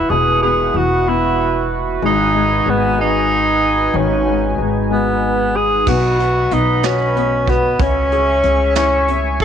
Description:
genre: six-eight pop ballad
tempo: 62 BPM (dotted quarters)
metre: 6/8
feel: straight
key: unclear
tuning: A4 = 439 Hz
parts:
  - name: breathy tenor saxophone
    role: melody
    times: 0.0-9.4 s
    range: B3 to A4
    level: -16 LUFS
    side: right 1 dB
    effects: none
  - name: clear upright piano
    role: accompaniment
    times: 0.0-9.4 s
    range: B2 to G#4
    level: -22 LUFS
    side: left 12 dB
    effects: none
  - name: chorused pulse-width pad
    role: sustained chords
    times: 0.0-9.4 s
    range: D#4 to C#6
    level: -21 LUFS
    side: right 2 dB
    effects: none
  - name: upright bass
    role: bass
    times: 0.0-9.4 s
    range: E1 to C#2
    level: -21 LUFS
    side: right 1 dB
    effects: none
  - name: vintage brush drum kit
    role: drums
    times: 5.9-9.4 s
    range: crash cymbal, hi-hat, kick drum, snare drum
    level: -22 LUFS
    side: right 3 dB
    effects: none
room: moderate spring reverb, RT60 2.4 s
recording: 1960s-style stereo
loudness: -13 LUFS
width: side -8 dB against mid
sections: 0.0-5.9 A section; 5.9-9.4 B section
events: none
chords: 0.0 Esus2; 2.0 G#m; 5.9 B; 7.8 C#m

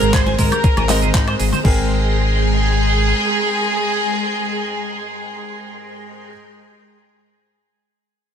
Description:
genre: nu-disco, nu disco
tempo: 119 BPM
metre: 4/4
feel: straight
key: Ab major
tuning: A4 = 440 Hz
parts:
  - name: warm studio violin section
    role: melody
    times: 0.0-6.3 s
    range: Ab4 to C5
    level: -22 LUFS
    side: right 1 dB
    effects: vintage 12-bit sampler grit, digital delay
  - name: warm concert grand piano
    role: accompaniment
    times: 0.0-6.3 s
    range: Ab3 to G5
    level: -26 LUFS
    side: right 2 dB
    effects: digital delay
  - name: string machine, full ensemble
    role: sustained chords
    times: 0.0-6.3 s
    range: Ab3 to C6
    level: -24 LUFS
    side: equal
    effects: phaser, ensemble chorus, sidechain pumping
  - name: electric guitar with an envelope filter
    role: riff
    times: 0.0-1.9 s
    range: Ab3 to Ab5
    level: -25 LUFS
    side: right 4 dB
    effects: lush chorus, digital delay
  - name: fingered electric bass with an envelope filter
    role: bass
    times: 0.0-3.1 s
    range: Ab1 to Ab2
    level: -18 LUFS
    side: equal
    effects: none
  - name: pop drum kit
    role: drums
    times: 0.0-1.8 s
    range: crash cymbal, handclaps, hi-hat, shaker, woodblock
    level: -24 LUFS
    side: left 1 dB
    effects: overdrive
  - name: electronic kick drum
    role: drums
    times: 0.1-1.8 s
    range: none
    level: -16 LUFS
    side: equal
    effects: none
  - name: congas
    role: percussion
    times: 0.3-1.6 s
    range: none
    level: -26 LUFS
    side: left 3 dB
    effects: none
room: light reverb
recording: none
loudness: -15 LUFS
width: side -8 dB against mid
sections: 0.0-1.6 A section; 1.6-5.7 B section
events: drop 0.0-1.6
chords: 0.0 Abadd9; 1.6 Abmaj9

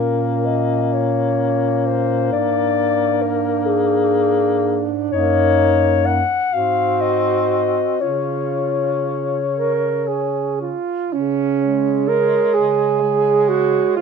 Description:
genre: classical, lyrical piece for single-reed quartet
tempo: 37-46 BPM (dotted quarters)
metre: 6/8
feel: rubato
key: Db major from 5.1 s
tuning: A4 = 440 Hz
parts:
  - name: mellow clarinet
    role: melody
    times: 0.0-14.0 s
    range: Ab4 to Gb5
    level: -20 LUFS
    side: left 8 dB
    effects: none
  - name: warm alto saxophone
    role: second line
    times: 0.0-14.0 s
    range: Db4 to Bb4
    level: -20 LUFS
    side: right 8 dB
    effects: none
  - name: warm tenor saxophone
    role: accompaniment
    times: 0.0-14.0 s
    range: Ab3 to Db4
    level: -23 LUFS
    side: left 4 dB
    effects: none
  - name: mellow bass clarinet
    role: bass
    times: 0.0-14.0 s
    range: Gb2 to Eb3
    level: -25 LUFS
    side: right 3 dB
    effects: none
room: light reverb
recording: minimal, uncompressed stereo recording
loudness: -16 LUFS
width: side -6 dB against mid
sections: 0.0-11.1 A section; 11.1-14.0 B section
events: none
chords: 0.0 Bbm; 2.3 Bb7/Ab; 5.1 Ebm7/Gb; 6.5 Ab7; 8.0 Db; 11.1 Db5

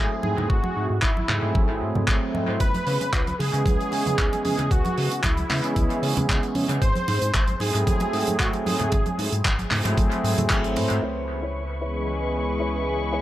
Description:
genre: nu-disco, nu disco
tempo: 114 BPM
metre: 4/4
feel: straight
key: C# minor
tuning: A4 = 440 Hz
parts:
  - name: wide unison lead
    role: melody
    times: 0.0-9.4 s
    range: E4 to B#4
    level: -29 LUFS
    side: equal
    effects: analog delay
  - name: warm analog pad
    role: accompaniment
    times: 0.0-13.2 s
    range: E3 to B#4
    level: -27 LUFS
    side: right 1 dB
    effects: chorus, vintage 12-bit sampler grit, analog delay
  - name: chorused synth bass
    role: bass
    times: 0.0-13.2 s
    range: G#1 to C#3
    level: -27 LUFS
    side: equal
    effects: tube saturation
  - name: congas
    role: percussion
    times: 0.2-10.9 s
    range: none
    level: -31 LUFS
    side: right 2 dB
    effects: none
  - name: electronic kick drum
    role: drums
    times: 0.5-10.6 s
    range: none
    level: -23 LUFS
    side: equal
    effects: studio reverb
  - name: damped 70s drum kit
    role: drums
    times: 1.0-11.0 s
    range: handclaps, hi-hat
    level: -28 LUFS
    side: right 1 dB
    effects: studio reverb, analog delay
  - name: rich studio string section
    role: sustained chords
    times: 11.0-13.2 s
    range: E4 to C#6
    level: -32 LUFS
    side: left 1 dB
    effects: sidechain pumping, low-pass filter
  - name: direct-recorded clean electric guitar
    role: riff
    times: 11.0-13.2 s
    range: E4 to C#5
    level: -34 LUFS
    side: left 2 dB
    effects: lush chorus, low-pass filter, analog delay
room: light reverb, small room ambience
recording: echo-heavy mix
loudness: -21 LUFS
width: side -14 dB against mid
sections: 0.0-11.0 A section; 11.0-13.2 B section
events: band accent 10.5; filter sweep on string section 11.0-13.2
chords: 0.0 G#7b9b13; 2.6 C#m7; 6.8 G#7b9b13; 11.0 C#m7

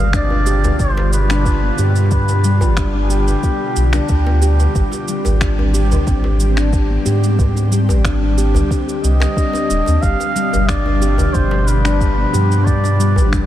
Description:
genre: organic downtempo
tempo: 91 BPM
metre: 4/4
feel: straight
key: unclear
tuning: A4 = 440 Hz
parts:
  - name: trumpet with cup mute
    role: melody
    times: 0.0-4.4, 9.0-13.4 s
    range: G4 to F5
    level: -23 LUFS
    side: equal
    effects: ping-pong delay
  - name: ethereal airy pad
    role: sustained chords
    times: 0.0-13.5 s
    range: B2 to G4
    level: -24 LUFS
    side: equal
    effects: ensemble chorus, built-in reverb, sidechain pumping
  - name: warm sub bass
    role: bass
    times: 0.0-13.5 s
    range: Eb1 to Ab2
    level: -15 LUFS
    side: equal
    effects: sidechain pumping
  - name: handpan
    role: arpeggios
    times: 0.1-13.5 s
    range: B2 to G4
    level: -21 LUFS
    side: left 1 dB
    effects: low-pass filter, ping-pong delay
  - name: electronic finger snaps and cabasa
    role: drums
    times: 0.1-13.5 s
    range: none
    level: -28 LUFS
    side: right 1 dB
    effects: none
  - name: electronic kick drum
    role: drums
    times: 0.1-13.5 s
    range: none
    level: -18 LUFS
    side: equal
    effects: none
  - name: djembe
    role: percussion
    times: 0.3-13.3 s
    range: none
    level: -26 LUFS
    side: equal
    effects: none
room: moderate huge ambient reverb, RT60 8.9 s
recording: dreamy mix soaked in reverb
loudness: -13 LUFS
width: side -12 dB against mid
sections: 0.0-13.5 A section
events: none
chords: 0.0 G7; 4.8 Abmaj7; 10.0 G7

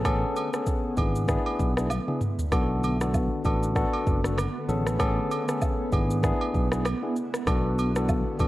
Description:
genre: afrobeats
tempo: 97 BPM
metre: 4/4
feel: swing 58% on 16ths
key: B dorian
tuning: A4 = 440 Hz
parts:
  - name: tine electric piano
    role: accompaniment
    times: 0.0-8.5 s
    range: B3 to A4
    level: -28 LUFS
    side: left 2 dB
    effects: none
  - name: granular cloud pad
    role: sustained chords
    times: 0.0-8.5 s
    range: D3 to F#4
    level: -34 LUFS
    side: right 1 dB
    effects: built-in reverb
  - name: fingered electric bass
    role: bass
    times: 0.0-8.5 s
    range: F#1 to B1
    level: -27 LUFS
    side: equal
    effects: none
  - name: afro-pop drum kit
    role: drums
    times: 0.0-8.5 s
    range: kick drum, rim click, shaker, toms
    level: -28 LUFS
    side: equal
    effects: none
  - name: agogo bells and woodblock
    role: percussion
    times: 0.0-8.5 s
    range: none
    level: -36 LUFS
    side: right 4 dB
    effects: none
room: light reverb, digital ambience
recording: worn, warbling old tape, cassette tape, warbly pitch drift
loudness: -23 LUFS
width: side -16 dB against mid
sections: 0.0-2.5 A section; 2.5-8.5 B section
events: drum fill 1.9-2.5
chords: 0.0 Amaj9; 1.0 E7/G#; 2.5 Bm7; 4.7 Amaj9; 5.9 E7/G#; 7.5 Bm7

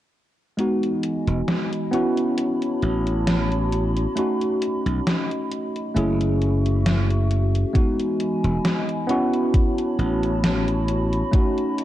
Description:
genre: vaporwave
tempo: 67 BPM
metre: 4/4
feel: swing 54% on 16ths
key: E major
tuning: A4 = 445 Hz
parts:
  - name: tine electric piano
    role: accompaniment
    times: 0.6-11.8 s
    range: G#3 to G#4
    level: -23 LUFS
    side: equal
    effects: analog chorus, tape echo
  - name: warbly tape-like pad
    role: sustained chords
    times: 0.8-11.8 s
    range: E3 to C#6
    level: -30 LUFS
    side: equal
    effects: chorus, built-in reverb
  - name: gated 80s digital drum machine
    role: drums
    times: 0.6-11.8 s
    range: hi-hat, snare drum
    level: -26 LUFS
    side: equal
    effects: gated reverb, gated reverb snare, overdrive
  - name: slap bass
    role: bass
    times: 1.3-11.2 s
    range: E1 to B1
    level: -22 LUFS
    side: equal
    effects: none
  - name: electronic kick drum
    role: drums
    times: 7.8-11.5 s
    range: none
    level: -18 LUFS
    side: equal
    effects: overdrive
room: light reverb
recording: dark, warm production, cassette tape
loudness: -20 LUFS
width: side -13 dB against mid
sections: 0.6-11.8 A section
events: none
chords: 0.6 Emaj7; 1.9 A69; 4.2 B7; 6.0 F#m7; 7.8 Emaj7; 9.1 A69; 11.3 B7

